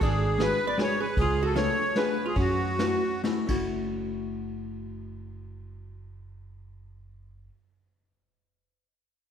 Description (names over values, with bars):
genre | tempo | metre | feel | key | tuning
musette waltz | 118-158 BPM | 3/4 | straight | F# minor | A4 = 441 Hz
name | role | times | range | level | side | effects
accordion | melody | 0.0-3.2 s | F#4 to D5 | -28 LUFS | left 1 dB | light tremolo tuning
archtop guitar, miked and amplified | second line | 0.0-3.2 s | C#4 to B4 | -32 LUFS | right 4 dB | none
upright bass | bass | 0.0-7.5 s | F#1 to F#2 | -34 LUFS | right 1 dB | none
vintage brush drum kit | drums | 0.0-3.6 s | crash cymbal, kick drum, ride cymbal, snare drum | -32 LUFS | equal | none
hollow-body jazz guitar | accompaniment | 0.4-7.5 s | G#3 to F#4 | -32 LUFS | left 4 dB | none
room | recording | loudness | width
moderate scoring stage reverb, RT60 2.0 s | recorded in a church or concert hall | -24 LUFS | side -8 dB against mid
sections
0.0-3.7 A section; 3.7-6.7 B section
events
slowing down 1.2-3.7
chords
0.0 G#m7b5; 1.2 C#7b9b13; 2.4 F#m7